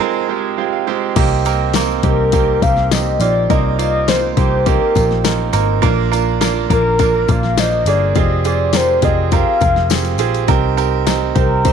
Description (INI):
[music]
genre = piano-driven pop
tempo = 103 BPM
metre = 4/4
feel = straight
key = C minor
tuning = A4 = 435 Hz
[part]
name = mellow horn-like synth lead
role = melody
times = 0.0-11.7 s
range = Bb4 to F5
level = -18 LUFS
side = left 2 dB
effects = chorus
[part]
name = bright grand piano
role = accompaniment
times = 0.0-11.7 s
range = Bb2 to C6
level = -18 LUFS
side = right 12 dB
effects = none
[part]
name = vintage muted picked electric bass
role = bass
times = 1.2-11.7 s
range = F1 to C2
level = -18 LUFS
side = left 1 dB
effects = none
[part]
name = pop drum kit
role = drums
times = 1.2-11.7 s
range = crash cymbal, hi-hat, kick drum, snare drum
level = -19 LUFS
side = left 4 dB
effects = none
[part]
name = tambourine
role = percussion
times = 1.2-11.7 s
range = none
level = -32 LUFS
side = left 14 dB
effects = none
[sound]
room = light reverb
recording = 1960s-style stereo with parts hard left and right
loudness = -13 LUFS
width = side -7 dB against mid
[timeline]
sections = 0.0-1.2 A section; 1.2-11.7 B section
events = break 0.0-1.2; grand piano fill 0.0-1.2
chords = 0.0 Fmadd9; 1.2 Cm7; 5.8 Bb; 8.2 Fmadd9; 10.5 Cm7